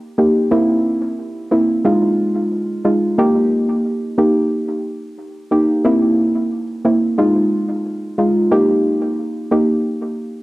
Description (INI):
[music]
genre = dancehall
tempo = 90 BPM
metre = 4/4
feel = straight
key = Eb major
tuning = A4 = 439 Hz
[part]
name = soft round pluck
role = solo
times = 0.2-9.7 s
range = Ab3 to G4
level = -15 LUFS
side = equal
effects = chorus, cassette tape, analog delay
[sound]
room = moderate small room reverb, RT60 0.6 s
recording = home recording on cassette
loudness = -14 LUFS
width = side -19 dB against mid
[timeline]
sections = 0.0-10.4 A section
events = none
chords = 0.0 Eb; 0.5 C7; 1.8 Fm7; 3.2 Eb; 5.8 C7; 7.2 Fm7; 8.5 Eb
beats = | 0.52 1.18 1.85 2.52 | 3.18 3.85 4.52 5.18 | 5.85 6.52 7.18 7.85 | 8.52 9.18